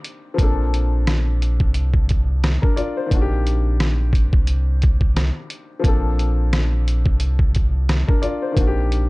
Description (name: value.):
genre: hip hop, boom-bap hip-hop.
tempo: 88 BPM.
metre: 4/4.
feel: swing 56% on 16ths.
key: Bb major.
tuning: A4 = 439 Hz.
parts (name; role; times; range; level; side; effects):
warm upright piano; accompaniment; 0.0-9.1 s; Eb3 to D5; -26 LUFS; left 4 dB; cassette tape, high-pass filter, low-pass filter.
trip hop sampler-style drum kit; drums; 0.0-9.1 s; hi-hat, kick drum, rim click, snare drum; -19 LUFS; equal; none.
sub bass with octave; bass; 0.4-9.1 s; Bb1 to C2; -19 LUFS; equal; none.
room: digital ambience.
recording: dark, warm production, nothing above 10.9 kHz.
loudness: -16 LUFS.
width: side -22 dB against mid.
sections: 0.0-9.1 A section.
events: none.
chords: 0.4 Bbmaj9; 3.1 Cm7/Bb; 5.8 Bbmaj9; 8.6 Cm7/Bb.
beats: | 0.38 1.07 1.75 2.43 | 3.11 3.79 4.47 5.16 | 5.84 6.52 7.20 7.88 | 8.57.